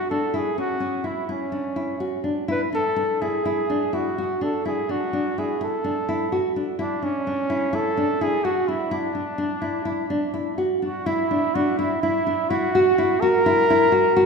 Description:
contemporary instrumental, contemporary; 252 BPM (eighths); 9/8; straight; D lydian; A4 = 440 Hz
warm flugelhorn; melody; 0.0-14.3 s; C#4 to B4; -24 LUFS; equal
nylon-string guitar; arpeggios; 0.0-14.3 s; C#4 to F#4; -23 LUFS; equal
wet scoring stage reverb, RT60 2.1 s; recorded in a church or concert hall; -20 LUFS; side -5 dB against mid
0.0-11.1 A section; 11.1-14.3 B section
0.3 F#5/C#; 2.5 Dsus2; 11.1 Dadd9

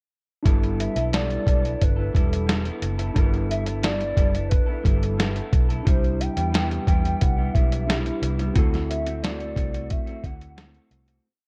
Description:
indie pop, bedroom pop; 89 BPM; 4/4; straight; G major; A4 = 439 Hz
tine electric piano; accompaniment; 0.4-11.3 s; C4 to B4; -35 LUFS; equal; cassette tape
electric guitar through a small old amp; accompaniment; 0.5-11.3 s; C3 to A4; -33 LUFS; equal; subtle chorus, vibrato effect
vintage muted fingered electric bass; bass; 0.5-11.2 s; E1 to E2; -29 LUFS; equal
lo-fi sampler-style drum kit; drums; 0.5-11.2 s; hi-hat, kick drum, snare drum; -24 LUFS; equal
warbly nostalgic lead; melody; 0.8-10.9 s; A4 to G5; -33 LUFS; equal; analog chorus
light reverb; dark, warm production; -23 LUFS; mono
0.5-11.2 verse
fade-out 8.6-11.2
0.5 G69; 5.9 Cmaj7; 8.6 D7

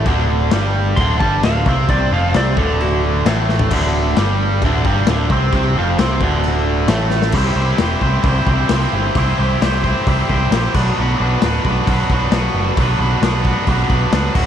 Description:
garage rock duo or trio; 132 BPM; 4/4; straight; A4 = 440 Hz
clean lap steel guitar; melody; 0.0-3.0 s; F#4 to C6; -22 LUFS; equal
biting overdriven guitar; riff; 0.0-14.5 s; D2 to C5; -18 LUFS; right 1 dB
growling picked electric bass; bass; 0.0-14.5 s; D1 to C#2; -18 LUFS; right 1 dB; overdrive, tube saturation
raw garage drum kit; drums; 0.1-14.5 s; crash cymbal, hi-hat, kick drum, snare drum, toms; -20 LUFS; left 3 dB
light reverb, small room ambience; 1960s-style stereo; -14 LUFS; side -9 dB against mid
0.0-3.7 A section; 3.7-7.3 B section; 7.3-14.5 C section
electric slide guitar solo 0.0-3.7; drum fill 3.5, 7.1
0.0 D5; 7.3 C; 10.8 Bm

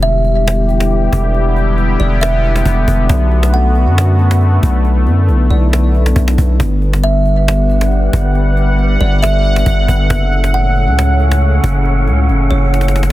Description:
hip hop, atmospheric cloud-rap; 137 BPM; 4/4; half-time; E dorian; A4 = 440 Hz
kalimba; melody; 0.0-13.1 s; C#5 to F#5; -20 LUFS; right 2 dB; tape echo
sweeping resonant pad; sustained chords; 0.0-13.1 s; A2 to F#5; -18 LUFS; left 2 dB; chorus
long sustained 808-style bass; bass; 0.0-13.1 s; E1 to F#2; -12 LUFS; equal
cajon; drums; 0.0-13.1 s; -20 LUFS; equal
wind-like tuned noise texture; texture; 7.3-13.1 s; B3 to F#5; -25 LUFS; equal; built-in reverb
little or no reverb; dense, heavily limited modern master; -10 LUFS; side -16 dB against mid
0.0-13.1 A section
drum fill 12.7-13.1
0.0 Em7; 3.1 Bm7; 6.6 Gmaj7; 10.1 F#m

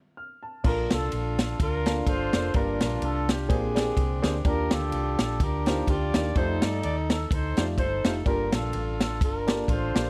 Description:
uptempo gospel; 126 BPM; 4/4; swing 56% on 8ths; Bb major; A4 = 440 Hz
warm baby grand piano; accompaniment; 0.2-10.1 s; G2 to F6; -34 LUFS; equal
mellow horn section; melody; 0.6-10.1 s; C4 to D5; -32 LUFS; equal
hollow-body short-scale fingered electric bass; bass; 0.6-10.1 s; F1 to G2; -33 LUFS; equal
swinging big-band drum kit; drums; 0.6-10.1 s; crash cymbal, kick drum, ride cymbal, snare drum; -30 LUFS; equal
little or no reverb; dry, close 1970s-style studio recording; -26 LUFS; mono
0.6-10.1 A section
break 0.0-0.6
0.0 F; 0.6 Bbmaj7; 2.6 Gm7; 3.5 Bb13; 4.5 Ebmaj9; 6.4 F13; 8.3 Gm9

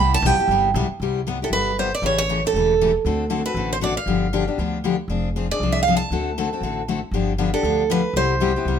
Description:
acoustic string swing (jazz manouche); 235 BPM; 4/4; swing 57% on 8ths; C major; A4 = 441 Hz
picked steel-string acoustic guitar; melody; 0.0-8.8 s; A4 to B5; -21 LUFS; right 5 dB
picked steel-string acoustic guitar; accompaniment; 0.0-8.8 s; C3 to A4; -23 LUFS; left 6 dB
upright bass; bass; 0.0-8.8 s; E1 to D2; -25 LUFS; equal
moderate studio reverb, RT60 0.6 s; minimal, uncompressed stereo recording; -19 LUFS; side -8 dB against mid
0.0-1.0 A section; 1.0-8.8 B section
steel-string acoustic guitar solo 0.0-1.0
0.0 Cmaj7; 2.0 A7; 3.1 D7; 4.1 G7; 5.1 Fm6; 6.1 D7; 7.1 G9; 8.1 Cmaj7

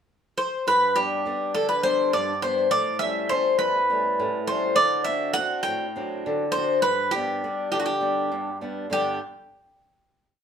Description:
greek folk, Greek bouzouki band; 204 BPM (eighths); 7/8; straight; G major; A4 = 440 Hz
Greek bouzouki; melody; 0.4-9.2 s; F#4 to G5; -22 LUFS; equal
picked swing-style acoustic guitar; accompaniment; 0.7-9.2 s; E2 to F#4; -28 LUFS; left 1 dB
moderate studio reverb, RT60 0.8 s; band playing live in one room; -22 LUFS; side -7 dB against mid
0.0-0.7 pickup bar; 0.7-8.9 A section; 8.9-10.4 final chord
0.0 N.C.; 0.7 G; 2.7 A7; 4.8 D7; 6.8 G

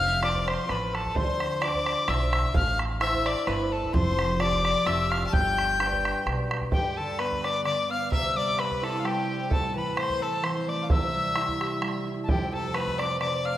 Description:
celtic folk, Celtic waltz; 129 BPM; 3/4; swing 54% on 8ths; G mixolydian; A4 = 440 Hz
bright wooden whistle; melody; 0.0-13.6 s; F5 to G6; -29 LUFS; left 2 dB
clear fiddle; second line; 0.0-13.6 s; G4 to A5; -30 LUFS; left 4 dB
concert harp; accompaniment; 0.0-13.6 s; F2 to C5; -31 LUFS; right 2 dB
upright bass; bass; 0.0-6.7 s; F1 to D2; -30 LUFS; equal
bodhran; percussion; 0.2-13.3 s; -30 LUFS; right 2 dB
moderate lush hall reverb, RT60 2.3 s; rough home demo mix; -24 LUFS; side -13 dB against mid
0.0-6.7 A section; 6.7-13.6 B section
0.0 F; 1.2 Dm7; 2.5 Am; 3.9 Fadd9; 5.3 G; 8.1 C; 9.5 Am; 10.9 C; 12.3 F

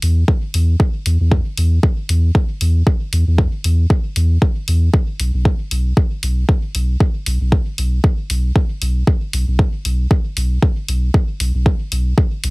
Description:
dub techno; 116 BPM; 4/4; swing 56% on 16ths; A4 = 441 Hz
pure sine sub bass; bass; 0.0-12.5 s; B1 to E2; -15 LUFS; equal; sidechain pumping
electronic hi-hat; drums; 0.0-12.5 s; -26 LUFS; left 2 dB
electronic kick drum; drums; 0.3-12.3 s; -15 LUFS; equal
little or no reverb; heavily compressed radio sound, multiband compression; -14 LUFS; side -26 dB against mid
0.0-12.5 A section

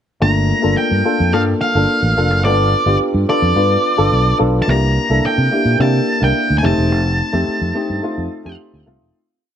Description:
polished 1980s jazz-funk pop; 108 BPM; 4/4; straight; G minor; A4 = 443 Hz
octave-fuzz lead guitar; melody; 0.2-8.6 s; D5 to Bb5; -18 LUFS; right 1 dB; distortion
dark grand piano; accompaniment; 0.2-9.2 s; A3 to B4; -18 LUFS; left 2 dB; wide subtle chorus
fingered electric bass; bass; 0.2-9.1 s; E1 to C3; -17 LUFS; right 1 dB
small room ambience; -13 LUFS; side -9 dB against mid
0.2-9.1 verse
fade-out 6.9-9.1
0.2 Gm7; 2.4 G7; 4.7 C7; 6.6 F7

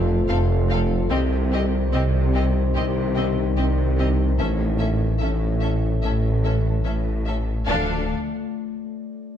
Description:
cinematic, hybrid orchestral and electronic film score; 73 BPM; 4/4; straight; D phrygian; A4 = 440 Hz
deep rumbling drone; sustained chords; 0.0-8.1 s; A3 to E5; -29 LUFS; left 4 dB; built-in reverb
warm French horn section; sustained chords; 0.0-8.1 s; Eb3 to F4; -30 LUFS; left 5 dB
clear tuba; bass; 0.0-8.1 s; F1 to D2; -29 LUFS; right 4 dB
punchy sub bass; bass; 0.0-8.1 s; D1 to C2; -24 LUFS; equal
rich symphonic cello section; bass; 0.0-8.1 s; F2 to D3; -27 LUFS; right 1 dB
rich symphonic double bass section; bass; 0.0-8.1 s; F1 to D2; -28 LUFS; right 3 dB
clear grand piano; texture; 0.0-7.7 s; B4 to C5; -46 LUFS; left 6 dB
warm symphonic violin section; melody; 0.3-8.1 s; Eb5 to F5; -34 LUFS; left 3 dB
warm symphonic violin section; second line; 0.3-8.1 s; G4 to A4; -34 LUFS; left 5 dB
clear symphonic viola section; accompaniment; 0.3-8.1 s; C4 to D4; -32 LUFS; right 1 dB
light reverb; dark, warm production; -20 LUFS; side -9 dB against mid
0.0-7.7 A section; 7.7-9.4 B section
0.0 F; 1.1 Cm; 4.4 A; 7.7 Dm

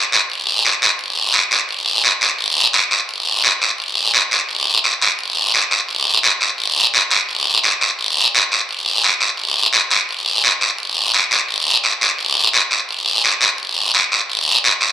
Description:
latin; 172 BPM; 4/4; straight
guiro; percussion; 0.1-14.9 s; -13 LUFS; equal
moderate studio reverb, RT60 0.8 s; dark, warm production; -13 LUFS; side -11 dB against mid
0.0-4.5 A section; 4.5-14.9 B section

